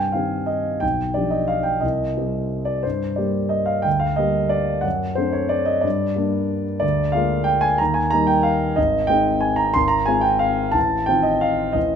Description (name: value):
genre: classical, piano waltz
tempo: 181 BPM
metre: 3/4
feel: uneven beats, rubato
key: unclear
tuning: A4 = 439 Hz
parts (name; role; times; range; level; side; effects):
- warm concert grand piano; solo; 0.0-12.0 s; Ab1 to C6; -18 LUFS; equal; none
room: moderate recital hall reverb, RT60 1.8 s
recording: close, detailed microphones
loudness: -18 LUFS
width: side -7 dB against mid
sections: 0.0-12.0 A section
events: none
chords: 0.0 Cm; 0.8 G7/B; 1.8 Cm; 2.8 Gm; 4.9 D7/F#; 5.8 Gm; 6.8 Bb7/D; 7.8 Eb; 8.8 Ab; 9.8 Fm/Ab; 10.8 F7/A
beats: 0.14 0.48 | 0.82 1.16 1.50 | 1.83 2.16 2.51 | 2.84 3.18 3.52 | 3.86 4.19 4.52 | 4.85 5.18 5.52 | 5.84 6.17 6.50 | 6.83 7.15 7.47 | 7.79 8.12 8.45 | 8.77 9.09 9.43 | 9.75 10.08 10.42 | 10.75 11.08 11.43 | 11.76